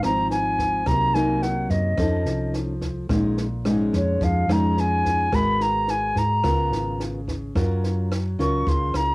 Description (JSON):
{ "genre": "bossa nova", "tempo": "108 BPM", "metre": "4/4", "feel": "straight", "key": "Db major", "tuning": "A4 = 444 Hz", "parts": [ { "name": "concert flute", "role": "melody", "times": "0.0-9.1 s", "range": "Db5 to Db6", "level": "-23 LUFS", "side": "equal", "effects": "cassette tape" }, { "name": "nylon-string guitar", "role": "accompaniment", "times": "0.0-9.1 s", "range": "Ab2 to Bb4", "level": "-25 LUFS", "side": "equal", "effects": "cassette tape" }, { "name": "hollow-body short-scale fingered electric bass", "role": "bass", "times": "0.0-9.1 s", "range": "Ab1 to Ab2", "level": "-25 LUFS", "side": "equal", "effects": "none" }, { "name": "compact cocktail drum kit", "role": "drums", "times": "0.0-9.1 s", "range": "kick drum, rim click, snare drum", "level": "-29 LUFS", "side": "equal", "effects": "cassette tape" } ], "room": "light reverb", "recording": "home recording on cassette", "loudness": "-20 LUFS", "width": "side -23 dB against mid", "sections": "0.0-9.1 A section", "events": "none", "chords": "0.0 Dbmaj9 (rootless); 0.9 Cm7b5; 2.0 F7b13; 3.1 Bbm7; 5.3 Abm9; 6.4 Db6; 7.6 Gbmaj7" }